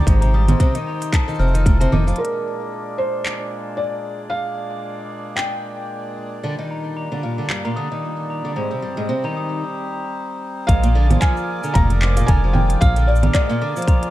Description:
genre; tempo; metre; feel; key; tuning
folktronica; 113 BPM; 4/4; swing 56% on 16ths; Bb mixolydian; A4 = 441 Hz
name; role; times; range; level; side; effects
hand-pumped harmonium; sustained chords; 0.0-14.1 s; Bb2 to D5; -30 LUFS; right 2 dB; low-pass filter
fingerpicked twelve-string acoustic guitar; arpeggios; 0.0-2.2, 6.4-14.1 s; G2 to F3; -24 LUFS; equal; digital delay
round analog bass; bass; 0.1-2.1, 10.7-13.3 s; F1 to Bb1; -16 LUFS; equal; none
electronic kick drum; drums; 0.1-1.8, 10.7-14.0 s; none; -16 LUFS; equal; none
organic electronic drum kit; drums; 0.1-14.1 s; congas, handclaps, hi-hat, shaker; -23 LUFS; right 2 dB; none
glockenspiel with rubber mallets; second line; 0.2-2.0, 6.7-14.0 s; A5 to F6; -30 LUFS; left 3 dB; tape echo
felt-muted upright piano; melody; 2.2-6.1, 10.7-14.1 s; Bb4 to Bb5; -25 LUFS; equal; digital delay
room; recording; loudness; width
small room ambience; dark, warm production; -17 LUFS; side -15 dB against mid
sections
0.0-2.2 A section; 2.2-10.7 B section; 10.7-14.1 C section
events
filter sweep on harmonium 2.2-10.7; break 9.6-10.7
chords
0.1 Abmaj7; 1.1 F7; 2.2 Bb7; 6.4 Ebmaj7/Bb; 8.6 Abmaj7; 10.7 Bb7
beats
| 0.07 0.60 1.13 1.66 | 2.19 2.73 3.26 3.79 | 4.32 4.85 5.38 5.91 | 6.44 6.97 7.50 8.04 | 8.57 9.10 9.63 10.16 | 10.69 11.22 11.75 12.28 | 12.81 13.35 13.88

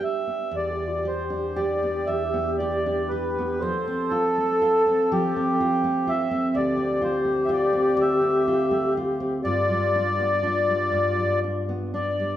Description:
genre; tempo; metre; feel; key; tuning
celtic folk, Celtic slow air; 40 BPM (dotted quarters); 6/8; uneven beats, rubato; unclear; A4 = 440 Hz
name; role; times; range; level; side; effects
mellow accordion; melody; 0.0-12.4 s; G4 to E5; -25 LUFS; equal; none
mellow hollow wooden flute; second line; 0.0-11.9 s; F4 to A4; -26 LUFS; left 2 dB; none
nylon-string guitar; accompaniment; 0.0-12.4 s; D2 to G4; -27 LUFS; right 1 dB; none
room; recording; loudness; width
wet recital hall reverb, RT60 1.7 s; recorded in a church or concert hall; -21 LUFS; side -12 dB against mid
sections
0.0-12.4 A section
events
none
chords
0.0 G; 0.5 Em7; 3.6 F; 6.5 Dm7; 9.4 G7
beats
| 0.54 2.08 | 3.61 5.10 | 6.54 7.98 | 9.45 10.93

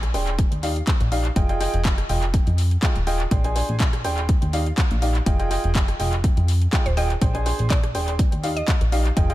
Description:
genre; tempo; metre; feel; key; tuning
piano house; 123 BPM; 4/4; swing 54% on 16ths; F dorian; A4 = 440 Hz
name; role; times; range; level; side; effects
plucky analog bass; bass; 0.0-9.3 s; Eb1 to F2; -22 LUFS; equal; sidechain pumping
house drum kit; drums; 0.0-9.3 s; handclaps, hi-hat, rim click; -30 LUFS; left 1 dB; overdrive, studio reverb, analog delay
warm upright piano; riff; 0.1-9.3 s; D4 to Ab5; -27 LUFS; right 1 dB; sidechain pumping, analog delay
electronic kick drum; drums; 0.4-9.3 s; none; -20 LUFS; equal; overdrive, studio reverb
mallet-like synth pluck; melody; 6.9-8.9 s; C5 to Eb5; -32 LUFS; right 2 dB; chorus, analog delay
room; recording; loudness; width
little or no reverb; echo-heavy mix; -19 LUFS; side -16 dB against mid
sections
0.0-9.3 A section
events
none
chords
0.4 Ebmaj9; 1.4 Fm9; 3.3 Bb13; 4.3 Ebmaj9; 5.3 Fm9; 7.2 Bb13; 8.2 Ebmaj9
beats
0.39 0.87 | 1.36 1.85 2.34 2.83 | 3.31 3.80 4.29 4.78 | 5.26 5.75 6.24 6.73 | 7.22 7.70 8.19 8.68 | 9.17

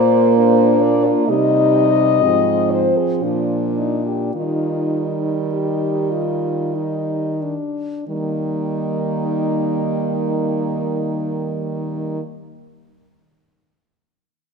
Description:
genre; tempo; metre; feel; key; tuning
classical, lyrical piece for horn quartet; 43-68 BPM; 3/4; rubato; Eb major; A4 = 440 Hz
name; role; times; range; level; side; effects
mellow French horn; melody; 0.0-12.2 s; Eb4 to Eb5; -21 LUFS; left 9 dB; none
mellow French horn; second line; 0.0-12.2 s; F3 to Bb3; -22 LUFS; right 10 dB; none
mellow French horn; accompaniment; 0.0-12.2 s; G3 to G4; -23 LUFS; left 2 dB; none
clear French horn; bass; 0.0-12.2 s; Ab2 to Eb3; -23 LUFS; right 2 dB; none
room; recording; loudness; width
moderate scoring stage reverb, RT60 1.7 s; none; -16 LUFS; side -5 dB against mid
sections
0.0-8.1 A section; 8.1-11.9 B section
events
slowing down 0.0-8.1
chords
0.0 Bb; 1.3 Cm; 2.2 Ab6; 3.2 Bb; 4.3 Eb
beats
0.38 | 1.29 2.22 3.22 | 4.34 5.52 6.75 | 8.08 9.36 10.64

